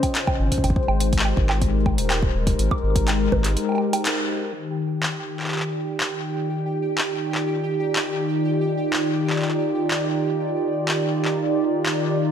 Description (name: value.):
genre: IDM.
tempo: 123 BPM.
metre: 4/4.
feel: straight.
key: Eb major.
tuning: A4 = 440 Hz.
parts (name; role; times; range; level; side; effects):
hollow soft pad; sustained chords; 0.0-12.3 s; Db3 to Eb5; -23 LUFS; equal; chorus.
booming analog drum machine; drums; 0.0-12.0 s; bongos, handclaps, hi-hat; -26 LUFS; right 1 dB; small room ambience, ping-pong delay.
electronic kick drum; drums; 0.0-3.4 s; none; -24 LUFS; equal; small room ambience.
round analog bass; bass; 0.4-3.6 s; Eb1 to Ab1; -22 LUFS; equal; tube saturation.
pulsing gated texture; texture; 4.5-12.3 s; G4 to G5; -33 LUFS; equal; chorus, built-in reverb.
room: moderate lush hall reverb, RT60 2.1 s.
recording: none.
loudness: -20 LUFS.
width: side -8 dB against mid.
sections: 0.0-4.5 A section; 4.5-12.3 B section.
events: break 3.6-4.5; band accent 4.1; filter sweep on analog synth pad 4.5-12.3.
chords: 0.0 Dbmaj7; 0.6 Abmaj7; 4.5 Ebmaj7.